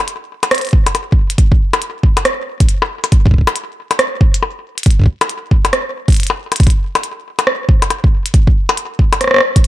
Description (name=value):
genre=IDM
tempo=138 BPM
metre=4/4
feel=swing 62% on 16ths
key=none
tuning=none
part: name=glitchy drum kit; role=drums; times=0.1-9.7 s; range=hi-hat, percussion blips, rim click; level=-15 LUFS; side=left 2 dB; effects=tape echo
part: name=electronic kick drum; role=drums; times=0.7-9.6 s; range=none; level=-10 LUFS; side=equal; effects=none
room=digital ambience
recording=none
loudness=-12 LUFS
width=side -14 dB against mid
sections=0.0-9.7 A section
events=none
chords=none